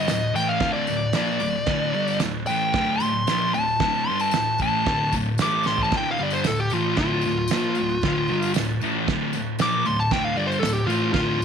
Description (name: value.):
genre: garage rock duo or trio.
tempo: 114 BPM.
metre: 4/4.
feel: straight.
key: D minor.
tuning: A4 = 440 Hz.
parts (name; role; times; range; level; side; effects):
fuzz lead guitar; melody; 0.0-11.4 s; F4 to D6; -24 LUFS; left 1 dB; distortion, tape echo.
fuzz guitar; riff; 0.0-11.4 s; D2 to Bb3; -24 LUFS; left 1 dB; distortion.
cloth-damped thuddy drum kit; drums; 0.1-11.3 s; crash cymbal, kick drum, snare drum, toms; -28 LUFS; right 5 dB; none.
tambourine; percussion; 0.1-11.4 s; none; -40 LUFS; left 18 dB; none.
room: light reverb, studio ambience.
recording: 1960s-style stereo.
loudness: -20 LUFS.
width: side -7 dB against mid.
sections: 0.0-11.4 A section.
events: lead electric guitar solo 0.0-11.4; drum fill 5.7.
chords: 0.0 D5; 5.4 A5; 5.9 Dm.